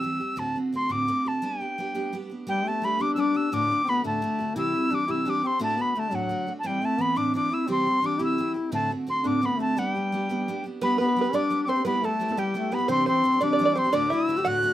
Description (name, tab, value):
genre	celtic folk, Celtic jig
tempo	115 BPM (dotted quarters)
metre	6/8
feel	straight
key	G major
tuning	A4 = 438 Hz
part	reedy mid whistle	melody	0.0-14.7 s	F#5 to F#6	-26 LUFS	equal	none
part	picked steel-string acoustic guitar	accompaniment	0.0-14.7 s	D2 to G4	-30 LUFS	right 3 dB	none
part	mellow duduk	second line	2.5-14.7 s	F#3 to G4	-27 LUFS	left 4 dB	none
part	open-back banjo	second line	10.8-14.7 s	G4 to F#5	-28 LUFS	right 5 dB	tape echo
room	wet small room reverb, RT60 0.5 s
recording	rough home demo mix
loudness	-23 LUFS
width	side -13 dB against mid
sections	0.0-2.5 A section; 2.5-10.8 A section; 10.8-14.7 B section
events	none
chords	0.4 D7; 1.4 G; 3.5 D; 4.6 C; 5.6 D; 6.6 Am; 7.7 C; 8.7 D7; 9.8 G; 11.9 Em/G; 12.9 Cadd9; 13.9 D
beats	| 0.37 0.89 | 1.42 1.94 | 2.46 2.99 | 3.51 4.03 | 4.56 5.08 | 5.60 6.12 | 6.64 7.17 | 7.69 8.21 | 8.73 9.25 | 9.77 10.29 | 10.81 11.33 | 11.85 12.37 | 12.89 13.41 | 13.93 14.45